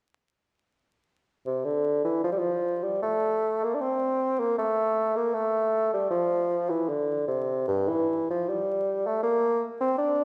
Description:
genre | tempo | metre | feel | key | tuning
classical, baroque-style fantasia for unaccompanied bassoon | 78 BPM | 4/4 | rubato | F major | A4 = 439 Hz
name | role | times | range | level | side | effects
mellow bassoon | solo | 1.5-10.2 s | G2 to D4 | -27 LUFS | equal | none
room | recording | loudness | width
wet recital hall reverb, RT60 1.6 s | heard from further back in the room, vinyl crackle | -27 LUFS | mono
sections
1.5-10.2 A section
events
none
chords
none

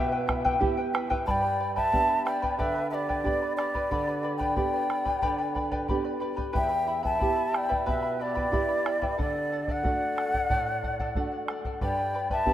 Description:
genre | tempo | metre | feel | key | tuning
andean folk, Andean ensemble | 91 BPM | 4/4 | straight | unclear | A4 = 440 Hz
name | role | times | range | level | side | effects
breathy large quena | melody | 0.0-12.5 s | D5 to A5 | -28 LUFS | equal | none
polished pan flute | second line | 0.0-12.5 s | G4 to E5 | -37 LUFS | right 1 dB | none
charango | accompaniment | 0.0-12.5 s | E4 to B5 | -32 LUFS | left 1 dB | none
nylon-string guitar | accompaniment | 0.0-12.5 s | E2 to G4 | -33 LUFS | right 2 dB | none
bombo | percussion | 0.3-12.5 s | none | -32 LUFS | equal | none
room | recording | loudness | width
wet lush hall reverb, RT60 2.7 s | rough home demo mix, faint mains hum | -25 LUFS | side -12 dB against mid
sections
0.0-1.3 A section; 1.3-12.5 B section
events
none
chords
0.0 Em; 1.3 G; 6.6 Em; 9.2 D; 11.8 G

